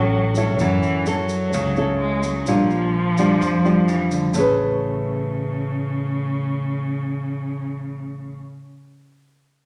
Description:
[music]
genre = bossa nova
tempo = 128 BPM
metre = 4/4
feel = straight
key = A major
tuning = A4 = 442 Hz
[part]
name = warm cello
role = second line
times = 0.0-8.4 s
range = C#3 to G#3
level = -27 LUFS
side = equal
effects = none
[part]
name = nylon-string guitar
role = accompaniment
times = 0.0-8.5 s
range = A2 to B4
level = -22 LUFS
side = equal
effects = none
[part]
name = upright bass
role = bass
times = 0.0-8.4 s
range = A1 to F#2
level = -30 LUFS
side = equal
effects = none
[part]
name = tube shaker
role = percussion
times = 0.4-4.5 s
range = none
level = -41 LUFS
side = equal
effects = none
[sound]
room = wet large studio reverb, RT60 1.3 s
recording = none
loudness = -21 LUFS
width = mono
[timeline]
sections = 0.0-4.4 A section; 4.4-8.1 B section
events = none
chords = 0.0 Dmaj7 (rootless); 0.6 F#m7; 2.5 Bb6; 4.4 Amaj9

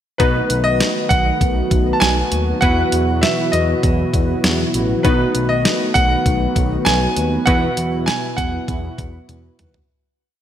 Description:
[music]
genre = synth-pop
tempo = 99 BPM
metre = 4/4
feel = straight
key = unclear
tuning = A4 = 440 Hz
[part]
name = clear concert grand piano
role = melody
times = 0.2-9.2 s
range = B4 to A5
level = -20 LUFS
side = equal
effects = ping-pong delay
[part]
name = funky polysynth comp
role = accompaniment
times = 0.2-9.9 s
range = B3 to B4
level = -22 LUFS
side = left 1 dB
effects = chorus
[part]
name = brassy analog pad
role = sustained chords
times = 0.2-9.9 s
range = B2 to F#4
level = -23 LUFS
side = right 1 dB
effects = chorus
[part]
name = smooth gliding synth bass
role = bass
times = 0.2-9.8 s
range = A1 to E2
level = -21 LUFS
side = equal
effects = none
[part]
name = detuned 8-bit digital drum machine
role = drums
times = 0.2-9.9 s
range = hi-hat, kick drum, snare drum, toms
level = -20 LUFS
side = equal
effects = none
[sound]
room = moderate lush hall reverb, RT60 1.7 s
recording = bright 1980s-style digital production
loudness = -14 LUFS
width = side -10 dB against mid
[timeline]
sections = 0.2-9.9 verse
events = fade-out 7.5-9.9; drum fill 9.3-9.9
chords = 0.2 B7; 2.6 Esus2; 5.0 B7; 7.5 Esus2

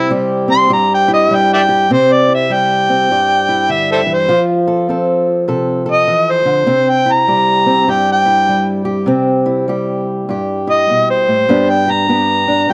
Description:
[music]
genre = acoustic country blues, solo or duo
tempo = 100 BPM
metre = 4/4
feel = swing 62% on 8ths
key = C major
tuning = A4 = 439 Hz
[part]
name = overdriven harmonica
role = melody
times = 0.0-12.7 s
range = A4 to C6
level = -14 LUFS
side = equal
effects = none
[part]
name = fingerpicked old ladder-braced acoustic guitar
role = accompaniment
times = 0.0-12.7 s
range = G2 to A4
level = -17 LUFS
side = equal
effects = none
[sound]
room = studio reverb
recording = dry, close 1970s-style studio recording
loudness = -13 LUFS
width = mono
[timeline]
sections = 0.0-1.9 A section; 1.9-12.7 B section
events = harmonica solo 0.0-1.9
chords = 0.0 C; 4.3 F; 6.7 C; 11.5 G

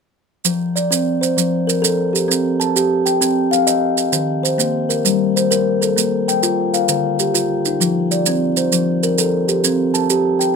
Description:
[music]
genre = southern african traditional, mbira-style interlocking cycle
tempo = 131 BPM (dotted quarters)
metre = 12/8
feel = straight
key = F mixolydian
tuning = A4 = 437 Hz
[part]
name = kalimba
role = arpeggios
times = 0.4-10.6 s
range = D3 to A5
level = -16 LUFS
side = left 1 dB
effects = none
[part]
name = maracas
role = percussion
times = 0.4-10.5 s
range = none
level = -18 LUFS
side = right 10 dB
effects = none
[sound]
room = light reverb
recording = close, detailed microphones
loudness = -15 LUFS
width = side -5 dB against mid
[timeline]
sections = 0.5-10.6 A section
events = none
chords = 0.5 F; 2.3 Cm; 4.1 Eb5; 5.0 Gm; 6.0 Bb5; 6.9 Dm; 7.8 F; 9.6 C5

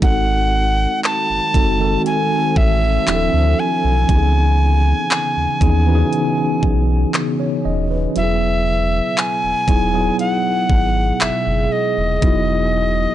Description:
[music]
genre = contemporary R&B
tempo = 59 BPM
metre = 4/4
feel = straight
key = E major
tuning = A4 = 443 Hz
[part]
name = bright reedy soprano recorder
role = melody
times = 0.0-13.1 s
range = D#5 to A5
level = -20 LUFS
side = right 1 dB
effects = none
[part]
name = mellow tine electric piano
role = accompaniment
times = 0.0-13.1 s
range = D#3 to D#5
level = -20 LUFS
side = equal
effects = medium stereo tremolo
[part]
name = deep dark ambient pad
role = sustained chords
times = 0.8-13.1 s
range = B2 to A4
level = -27 LUFS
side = left 1 dB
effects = chorus, built-in reverb, sidechain pumping
[part]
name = sub bass with octave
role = bass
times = 0.0-13.1 s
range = D1 to D#2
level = -18 LUFS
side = equal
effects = none
[part]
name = trap drum kit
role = drums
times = 0.0-12.5 s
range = handclaps, hi-hat, kick drum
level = -17 LUFS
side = equal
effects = none
[sound]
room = little or no reverb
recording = dry, gritty hardware recording, cassette tape, nothing above 10.7 kHz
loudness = -14 LUFS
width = side -12 dB against mid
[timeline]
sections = 0.0-13.1 A section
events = kick muted 8.2-9.2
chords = 0.0 G#7b9; 3.1 Dm9; 4.1 C#m9; 8.2 Emaj7

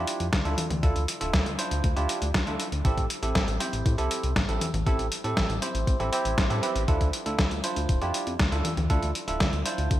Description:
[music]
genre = italo disco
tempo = 119 BPM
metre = 4/4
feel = straight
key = unclear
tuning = A4 = 440 Hz
[part]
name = bell-like tine electric piano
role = stabs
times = 0.0-10.0 s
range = C4 to C5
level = -30 LUFS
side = right 2 dB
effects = lush chorus, digital delay
[part]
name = chorused synth bass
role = bass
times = 0.0-10.0 s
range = D1 to A2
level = -29 LUFS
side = equal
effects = none
[part]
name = dusty soul sampler-style drum kit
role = drums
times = 0.1-10.0 s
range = congas, hi-hat, snare drum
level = -30 LUFS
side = left 1 dB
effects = overdrive, gated reverb
[part]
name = electronic kick drum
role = drums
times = 0.3-10.0 s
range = none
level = -26 LUFS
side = equal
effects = overdrive
[sound]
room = moderate plate reverb, RT60 2.9 s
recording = bright 1980s-style digital production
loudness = -24 LUFS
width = side -13 dB against mid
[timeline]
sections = 0.0-10.0 A section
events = none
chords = 0.0 Dmadd9; 2.8 Am7; 6.9 Dmadd9

